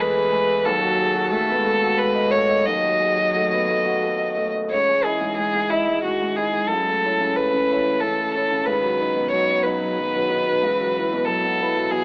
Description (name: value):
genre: neoclassical piano and strings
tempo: 91 BPM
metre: 3/4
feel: rubato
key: C# minor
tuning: A4 = 441 Hz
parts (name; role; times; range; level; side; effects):
- rich violin; melody; 0.0-12.0 s; E4 to D#5; -20 LUFS; equal; none
- dark cello; second line; 0.0-12.0 s; D#3 to A3; -31 LUFS; equal; none
- warm concert grand piano; accompaniment; 0.0-12.0 s; C#2 to D#5; -23 LUFS; equal; none
room: light reverb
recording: AM radio sound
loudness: -18 LUFS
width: side -34 dB against mid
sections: 0.0-4.7 A section; 4.7-12.0 B section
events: none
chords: 0.0 E; 0.7 D#dim; 4.7 C#madd9; 6.7 A/C#; 8.7 B/C#; 10.6 Esus2/C#